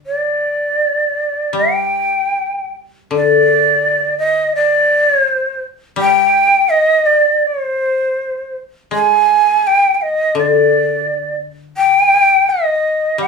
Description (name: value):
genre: japanese traditional, Japanese chamber music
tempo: 74-88 BPM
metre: 2/4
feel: rubato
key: G miyako bushi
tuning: A4 = 441 Hz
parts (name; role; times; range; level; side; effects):
- koto; accompaniment; 0.0-13.3 s; D3 to Ab3; -16 LUFS; left 6 dB; none
- breathy shakuhachi; melody; 0.1-13.3 s; C5 to Ab5; -12 LUFS; right 1 dB; none
room: light reverb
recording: studio ambience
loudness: -12 LUFS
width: side -4 dB against mid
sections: 0.0-3.1 A section; 3.1-13.3 B section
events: none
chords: none